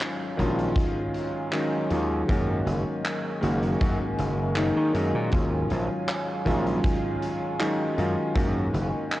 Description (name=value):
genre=vaporwave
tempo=79 BPM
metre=4/4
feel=straight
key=unclear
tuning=A4 = 441 Hz
part: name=warm electric grand piano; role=accompaniment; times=0.0-9.2 s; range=D#3 to F#4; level=-27 LUFS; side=left 1 dB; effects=wide subtle chorus, analog delay
part: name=warbly tape-like pad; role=sustained chords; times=0.0-9.2 s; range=F#3 to G#5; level=-34 LUFS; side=equal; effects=chorus, built-in reverb
part: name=big rock drum kit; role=drums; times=0.0-9.2 s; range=handclaps, hi-hat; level=-35 LUFS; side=right 1 dB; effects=vintage 12-bit sampler grit
part: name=gritty slap bass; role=bass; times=0.4-8.9 s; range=F#1 to D#3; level=-27 LUFS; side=equal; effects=overdrive, tube saturation
part: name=kick drum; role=drums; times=0.4-8.5 s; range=none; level=-28 LUFS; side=equal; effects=vintage 12-bit sampler grit
room=light reverb, small room reverb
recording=worn, warbling old tape, cassette tape, warbly pitch drift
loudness=-23 LUFS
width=side -16 dB against mid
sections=0.0-9.2 A section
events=none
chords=0.0 D#m11; 2.3 F#69; 5.3 D#m11; 8.4 F#69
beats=0.01 0.77 1.53 | 2.29 3.05 3.81 4.57 | 5.33 6.09 6.84 7.61 | 8.36 9.12